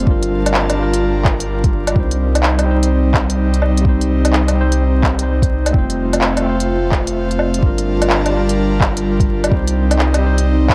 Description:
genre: future garage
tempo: 127 BPM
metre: 4/4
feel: swing 66% on 16ths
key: C dorian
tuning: A4 = 439 Hz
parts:
  - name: tine electric piano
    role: accompaniment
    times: 0.0-10.7 s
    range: G3 to C5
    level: -23 LUFS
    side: equal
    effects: vintage 12-bit sampler grit, sidechain pumping, analog delay
  - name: airy breathy pad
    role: sustained chords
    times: 0.0-10.7 s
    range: G3 to A5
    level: -23 LUFS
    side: equal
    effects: chorus, sidechain pumping
  - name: warm sub bass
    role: bass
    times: 0.0-10.7 s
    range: F1 to C2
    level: -20 LUFS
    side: equal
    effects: sidechain pumping
  - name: electronic kick drum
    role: drums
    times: 0.1-10.7 s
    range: none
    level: -18 LUFS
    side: equal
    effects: overdrive
  - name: organic electronic drum kit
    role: drums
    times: 0.2-10.7 s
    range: handclaps, hi-hat, woodblock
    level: -21 LUFS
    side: equal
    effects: overdrive
room: light reverb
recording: echo-heavy mix, vinyl crackle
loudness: -16 LUFS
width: mono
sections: 0.0-10.7 A section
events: none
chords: 0.1 Gm7; 2.0 Cm; 5.7 F; 7.6 Gm7; 9.5 Cm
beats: | 0.07 0.54 1.02 1.49 | 1.96 2.43 2.91 3.38 | 3.85 4.32 4.79 5.27 | 5.74 6.21 6.68 7.16 | 7.63 8.10 8.57 9.05 | 9.52 9.99 10.46

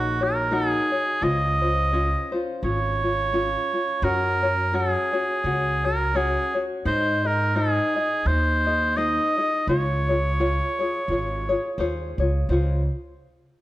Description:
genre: Hawaiian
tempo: 85 BPM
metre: 4/4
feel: swing 57% on 8ths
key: Db major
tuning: A4 = 440 Hz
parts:
  - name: clear oboe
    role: melody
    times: 0.0-11.8 s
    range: Gb4 to Eb5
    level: -24 LUFS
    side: right 1 dB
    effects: none
  - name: tenor ukulele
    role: accompaniment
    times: 0.0-12.8 s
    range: Db4 to Eb5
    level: -26 LUFS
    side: left 2 dB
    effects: none
  - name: upright bass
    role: bass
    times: 0.0-12.9 s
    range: Ab1 to Ab2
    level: -25 LUFS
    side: equal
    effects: none
room: moderate recital hall reverb, RT60 1.4 s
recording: none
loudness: -21 LUFS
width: side -15 dB against mid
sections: 0.0-12.5 A section; 12.5-13.6 B section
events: none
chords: 0.0 Ebm7; 1.2 Dbmaj7; 4.0 Gbsus2; 6.9 Ab; 9.7 Dbmaj7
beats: 0.53 | 1.23 1.93 2.63 3.34 | 4.04 4.74 5.45 6.15 | 6.86 7.56 8.26 8.97 | 9.67 10.38 11.08 11.78 | 12.49

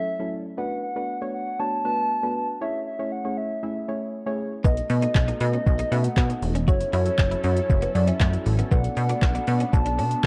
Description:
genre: dance-pop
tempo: 118 BPM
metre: 4/4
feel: straight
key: unclear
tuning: A4 = 437 Hz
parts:
  - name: hollow clarinet-like synth lead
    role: melody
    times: 0.0-10.3 s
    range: C#5 to A5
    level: -30 LUFS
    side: equal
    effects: chorus
  - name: soft round pluck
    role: accompaniment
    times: 0.0-10.3 s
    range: F#3 to E5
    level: -34 LUFS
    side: equal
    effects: chorus, sidechain pumping
  - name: lush unison pad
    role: sustained chords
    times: 4.6-10.3 s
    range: F#3 to A4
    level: -38 LUFS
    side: equal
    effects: none
  - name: direct-recorded clean electric guitar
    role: riff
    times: 4.6-10.3 s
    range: A3 to F#4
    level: -37 LUFS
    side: equal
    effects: ensemble chorus
  - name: plucky analog bass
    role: bass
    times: 4.6-10.3 s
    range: E1 to B2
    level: -26 LUFS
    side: equal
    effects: tube saturation, sidechain pumping
  - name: smooth R&B drum kit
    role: drums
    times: 4.6-10.3 s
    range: handclaps, hi-hat, kick drum, shaker, snare drum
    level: -24 LUFS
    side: equal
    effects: vintage 12-bit sampler grit
room: light reverb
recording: worn, warbling old tape, cassette tape, warbly pitch drift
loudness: -24 LUFS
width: mono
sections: 0.0-10.3 A section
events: none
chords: 0.0 F#m7; 0.6 Bm7; 2.6 Amaj7; 4.6 B7; 6.7 F#m7; 8.7 Bm7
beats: 0.07 | 0.58 1.09 1.59 2.10 | 2.61 3.12 3.63 4.14 | 4.64 5.15 5.66 6.17 | 6.68 7.19 7.70 8.21 | 8.71 9.22 9.73 10.24

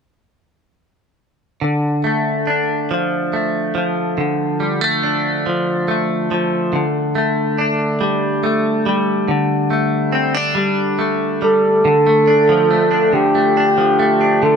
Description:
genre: pop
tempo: 47 BPM (dotted quarters)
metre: 6/8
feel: straight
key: D minor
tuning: A4 = 442 Hz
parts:
  - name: direct-recorded clean electric guitar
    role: accompaniment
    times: 1.6-14.6 s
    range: D3 to D4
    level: -16 LUFS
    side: equal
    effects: double-tracked left and right
  - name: breathy flugelhorn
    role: melody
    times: 11.4-14.6 s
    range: G4 to A4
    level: -13 LUFS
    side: right 1 dB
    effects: ping-pong delay
room: light reverb, small room ambience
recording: none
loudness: -14 LUFS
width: side -6 dB against mid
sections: 1.6-11.9 A section; 11.9-14.6 B section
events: none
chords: 1.6 Dm; 6.7 Gsus2/D; 11.9 Dm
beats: | 1.61 2.89 | 4.17 5.45 | 6.73 8.01 | 9.29 10.57 | 11.85 13.13 | 14.41

